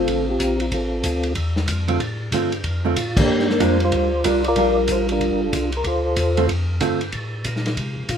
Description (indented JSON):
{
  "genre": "soul jazz organ trio",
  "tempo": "187 BPM",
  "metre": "4/4",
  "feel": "swing 63% on 8ths",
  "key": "D minor",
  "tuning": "A4 = 440 Hz",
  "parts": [
    { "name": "percussive tonewheel organ", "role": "melody", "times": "0.0-8.2 s", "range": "Bb3 to D5", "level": "-20 LUFS", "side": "left 1 dB", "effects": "slow rotary speaker, chorus vibrato" },
    { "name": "vintage hollow-body jazz guitar", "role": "accompaniment", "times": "0.0-7.0 s", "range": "D3 to Bb4", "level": "-22 LUFS", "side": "right 3 dB", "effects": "none" },
    { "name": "tonewheel organ", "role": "bass", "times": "0.0-8.2 s", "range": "F1 to C3", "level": "-24 LUFS", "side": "left 1 dB", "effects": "overdrive, chorus vibrato, slow rotary speaker" },
    { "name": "vintage drum kit", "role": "drums", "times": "0.1-8.2 s", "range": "crash cymbal, hi-hat, kick drum, ride cymbal, snare drum", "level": "-26 LUFS", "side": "equal", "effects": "none" }
  ],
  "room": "light reverb",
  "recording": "minimal, uncompressed stereo recording",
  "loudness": "-18 LUFS",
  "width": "side -8 dB against mid",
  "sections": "0.0-8.2 A section",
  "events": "band accent 3.1",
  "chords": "0.0 Dm7; 3.3 Gm7; 5.9 Dm7"
}